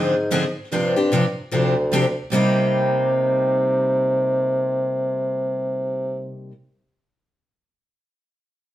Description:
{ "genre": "acoustic string swing (jazz manouche)", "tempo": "150 BPM", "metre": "4/4", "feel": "swing 63% on 8ths", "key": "C minor", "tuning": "A4 = 442 Hz", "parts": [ { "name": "picked steel-string acoustic guitar", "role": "accompaniment", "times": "0.0-6.5 s", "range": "C3 to Ab4", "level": "-24 LUFS", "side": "left 2 dB", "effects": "none" }, { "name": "picked steel-string acoustic guitar", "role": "accompaniment", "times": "0.0-6.5 s", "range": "C3 to Ab4", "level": "-28 LUFS", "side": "right 4 dB", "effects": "none" }, { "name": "mellow bassoon", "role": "bass", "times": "0.0-6.3 s", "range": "D2 to C3", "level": "-21 LUFS", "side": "equal", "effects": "none" } ], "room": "moderate stone room reverb, RT60 0.9 s", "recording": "band playing live in one room", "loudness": "-18 LUFS", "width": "side -13 dB against mid", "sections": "0.0-2.3 A section; 2.3-5.5 B section", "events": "none", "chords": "0.0 Dm7b5; 0.7 G7sus4; 2.3 Cm7" }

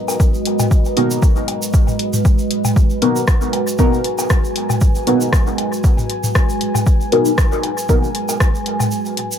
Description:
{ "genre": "dub techno", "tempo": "117 BPM", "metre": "4/4", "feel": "swing 55% on 16ths", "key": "G# minor", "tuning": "A4 = 441 Hz", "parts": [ { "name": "deep dark ambient pad", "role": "sustained chords", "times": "0.0-9.4 s", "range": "G#3 to G#5", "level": "-22 LUFS", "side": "right 2 dB", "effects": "chorus, built-in reverb, sidechain pumping" }, { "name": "egg shaker", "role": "percussion", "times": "0.1-9.4 s", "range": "none", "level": "-29 LUFS", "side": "right 3 dB", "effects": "none" }, { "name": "electronic woodblock and toms", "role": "percussion", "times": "0.1-8.9 s", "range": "none", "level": "-24 LUFS", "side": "left 3 dB", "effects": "sidechain pumping on perc, sidechain pumping on toms, dub echo" }, { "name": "electronic kick drum", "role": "drums", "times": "0.2-8.5 s", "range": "none", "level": "-14 LUFS", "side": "equal", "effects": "none" }, { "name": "deep house drum kit", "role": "drums", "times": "0.5-9.3 s", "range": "hi-hat, rim click", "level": "-23 LUFS", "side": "equal", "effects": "dub echo" }, { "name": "deep mellow chord stab", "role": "stabs", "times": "1.0-8.1 s", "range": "B3 to A#4", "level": "-19 LUFS", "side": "left 1 dB", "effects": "chorus, phaser, sidechain pumping, dub echo" } ], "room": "light reverb", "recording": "echo-heavy mix", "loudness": "-14 LUFS", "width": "side -9 dB against mid", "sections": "0.0-9.4 A section", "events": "break 8.9-9.4", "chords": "0.0 G#m7" }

